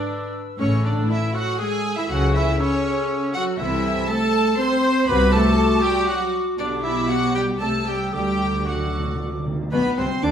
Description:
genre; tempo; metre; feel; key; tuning
quick classical-period movement for symphony orchestra; 120 BPM; 3/4; rubato; A major; A4 = 440 Hz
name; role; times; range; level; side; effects
warm chamber violin section; melody; 0.0-10.3 s; C#5 to D6; -29 LUFS; right 1 dB; none
concert flute; second line; 0.0-10.3 s; B4 to E6; -30 LUFS; left 3 dB; none
dark clarinet; second line; 0.0-10.3 s; B3 to B4; -29 LUFS; equal; none
mellow cor anglais; second line; 0.0-10.3 s; C#4 to D5; -30 LUFS; right 2 dB; none
warm chamber violin section; second line; 0.0-10.3 s; B3 to C5; -30 LUFS; equal; none
rich symphonic viola section; accompaniment; 0.0-10.3 s; C#4 to C5; -28 LUFS; equal; none
dark French horn section; sustained chords; 0.0-10.3 s; C#3 to D4; -25 LUFS; equal; none
dark chamber cello section; bass; 0.6-10.3 s; A2 to D3; -27 LUFS; equal; none
warm chamber double bass section; bass; 0.6-10.3 s; A1 to D2; -26 LUFS; equal; none
timpani; percussion; 8.1-9.7 s; D3; -30 LUFS; right 1 dB; none
room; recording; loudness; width
wet stone room reverb, RT60 1.0 s; heard from further back in the room; -19 LUFS; side -8 dB against mid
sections
0.0-9.7 A section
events
timpani fill 8.1-9.7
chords
0.0 E7(no3); 0.6 A5; 2.1 A/C#; 3.6 Am/C; 5.1 D7/C; 6.6 G/B; 7.6 C; 8.1 D; 9.7 Cmaj7sus2/B

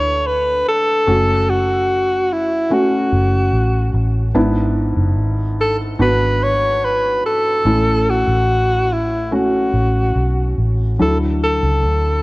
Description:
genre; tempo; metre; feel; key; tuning
pop; 73 BPM; 4/4; straight; D major; A4 = 441 Hz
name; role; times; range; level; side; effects
bright alto saxophone; melody; 0.0-12.2 s; E4 to C#5; -17 LUFS; equal; none
felt-muted upright piano; accompaniment; 0.0-12.2 s; G#2 to A4; -21 LUFS; equal; none
vintage muted fingered electric bass; bass; 0.0-12.2 s; F#1 to D2; -18 LUFS; equal; none
room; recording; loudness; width
light reverb, studio reverb; worn, warbling old tape, cassette tape, warbly pitch drift, nothing above 10.4 kHz; -14 LUFS; side -21 dB against mid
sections
0.0-12.2 A section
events
none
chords
0.0 Dadd9; 1.1 F#m; 4.4 E7; 7.7 A; 11.0 Dadd9

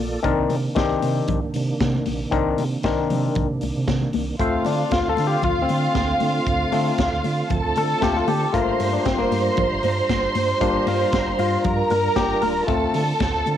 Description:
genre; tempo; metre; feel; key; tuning
disco; 116 BPM; 4/4; straight; unclear; A4 = 441 Hz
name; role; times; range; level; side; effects
percussive tonewheel organ; sustained chords; 0.0-13.6 s; C3 to Bb5; -28 LUFS; right 2 dB; chorus vibrato, slow rotary speaker, cassette tape
sub bass with octave; bass; 0.0-13.6 s; Eb1 to D3; -26 LUFS; right 2 dB; none
auto-wah clav; accompaniment; 0.2-13.0 s; Eb3 to Bb4; -23 LUFS; left 6 dB; cassette tape
vintage drum kit; drums; 0.2-13.6 s; hi-hat, kick drum, snare drum; -28 LUFS; right 2 dB; cassette tape
congas; percussion; 0.3-13.6 s; none; -28 LUFS; left 8 dB; none
rich studio string section; second line; 4.4-13.6 s; F4 to C6; -23 LUFS; right 2 dB; cassette tape
room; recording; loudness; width
light reverb, small room ambience; home recording on cassette; -19 LUFS; side -10 dB against mid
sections
0.0-4.4 A section; 4.4-13.6 B section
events
clav solo 4.4-13.6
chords
0.2 Cm9; 4.4 Dm7; 8.5 Gm7; 12.7 Dm7

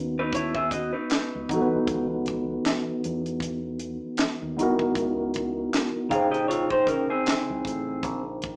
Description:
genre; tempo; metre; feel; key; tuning
R&B, neo-soul; 78 BPM; 4/4; swing 57% on 16ths; unclear; A4 = 441 Hz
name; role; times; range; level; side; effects
tine electric piano; accompaniment; 0.0-8.6 s; Db3 to G5; -29 LUFS; equal; overdrive
fingered electric bass; bass; 0.0-8.6 s; A1 to Fb2; -40 LUFS; equal; none
electric guitar through a small old amp; second line; 0.2-8.2 s; C4 to F5; -29 LUFS; equal; none
tight funk drum kit; drums; 0.3-8.6 s; handclaps, hi-hat, kick drum, snare drum; -31 LUFS; equal; none
room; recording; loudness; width
wet studio reverb, RT60 0.7 s; band playing live in one room, small speaker sound; -26 LUFS; mono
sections
0.0-8.6 A section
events
none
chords
0.0 Dbm11; 6.1 Bbm11

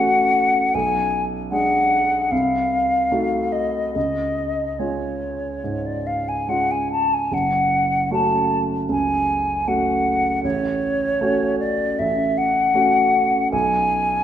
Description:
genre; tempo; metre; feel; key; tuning
classical, romantic duo for flute and grand piano; 71-79 BPM; 4/4; rubato; F# minor; A4 = 442 Hz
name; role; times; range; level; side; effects
mellow hollow silver concert flute; melody; 0.0-14.2 s; C#5 to A5; -19 LUFS; left 1 dB; none
warm grand piano; accompaniment; 0.0-14.2 s; F#1 to G#4; -23 LUFS; right 2 dB; none
room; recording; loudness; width
wet recital hall reverb, RT60 1.4 s; minimal, uncompressed stereo recording; -18 LUFS; side -10 dB against mid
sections
0.0-14.2 A section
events
none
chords
0.0 F#m/A; 0.7 G#dim/B; 2.3 Cdim7; 4.0 C#; 7.3 F#m; 10.4 F#m/A; 13.5 G#m/B

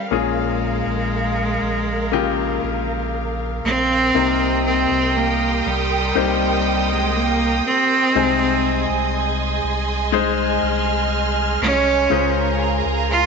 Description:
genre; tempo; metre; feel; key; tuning
pop ballad; 60 BPM; 4/4; straight; unclear; A4 = 440 Hz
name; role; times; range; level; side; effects
bright cello; melody; 0.0-13.3 s; G3 to F4; -20 LUFS; right 2 dB; none
clear baby grand piano; accompaniment; 0.0-13.3 s; Bb2 to C5; -23 LUFS; left 10 dB; none
warm studio string section; sustained chords; 0.0-13.3 s; Ab4 to F6; -26 LUFS; equal; none
warm sub bass; bass; 0.1-13.3 s; Bb1 to Db2; -25 LUFS; right 1 dB; none
warm studio violin section; second line; 4.1-13.3 s; G4 to Bb5; -25 LUFS; right 10 dB; none
room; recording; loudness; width
moderate echo chamber reverb, RT60 1.3 s, studio reverb; 1960s-style stereo with parts hard left and right, nothing above 7.7 kHz; -17 LUFS; side -5 dB against mid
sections
0.0-4.1 A section; 4.1-13.3 A section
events
none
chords
0.1 Bbm7; 4.1 Cm7; 8.1 Ab/C; 12.1 Dbmaj7

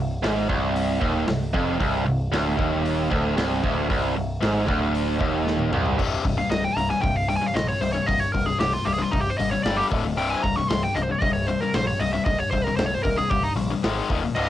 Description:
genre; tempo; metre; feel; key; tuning
heavy metal; 115 BPM; 4/4; straight; C minor; A4 = 440 Hz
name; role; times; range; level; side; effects
tight distorted guitar; riff; 0.0-14.5 s; C2 to Ab3; -26 LUFS; left 6 dB; distortion, cassette tape
tight distorted guitar; riff; 0.0-6.0 s; C2 to Ab2; -25 LUFS; right 8 dB; distortion, cassette tape
growling picked electric bass; bass; 0.0-14.5 s; C1 to Bb1; -29 LUFS; equal; overdrive
big rock drum kit; drums; 0.2-14.5 s; crash cymbal, hi-hat, kick drum, snare drum, toms; -29 LUFS; equal; cassette tape
nasal lead guitar with a parked wah; melody; 6.4-14.5 s; Eb4 to Db6; -25 LUFS; right 1 dB; overdrive, cassette tape
room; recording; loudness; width
little or no reverb; home recording on cassette; -21 LUFS; side -12 dB against mid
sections
0.0-6.0 A section; 6.0-14.5 B section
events
drum fill 5.5-6.0; lead electric guitar solo 6.0-14.5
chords
0.0 Cm; 6.0 C5; 9.6 G5; 9.9 D5; 10.2 C5; 13.8 Ab5; 14.1 Eb5

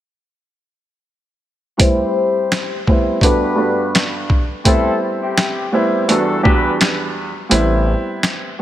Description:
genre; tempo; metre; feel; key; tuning
hip hop, boom-bap hip-hop; 84 BPM; 4/4; swing 58% on 16ths; A dorian; A4 = 441 Hz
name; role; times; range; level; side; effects
dark upright piano; accompaniment; 1.8-8.6 s; E2 to B4; -17 LUFS; right 1 dB; cassette tape, high-pass filter, low-pass filter
dark horn section; stabs; 1.8-6.7 s; B3 to C5; -21 LUFS; left 4 dB; high-pass filter, low-pass filter, tape echo
boom bap sampler-style drum kit; drums; 1.8-8.4 s; hi-hat, kick drum, snare drum; -17 LUFS; equal; none
smooth gliding synth bass; bass; 7.5-7.9 s; A1; -17 LUFS; equal; none
room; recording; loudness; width
light reverb, small room ambience; none; -14 LUFS; side -12 dB against mid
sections
1.8-7.5 A section; 7.5-8.6 B section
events
filter sweep 1.8-7.5; kick muted 7.5-8.6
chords
1.8 Am9; 3.2 Gmaj7; 4.7 Am9; 6.1 Em7; 7.5 Am9

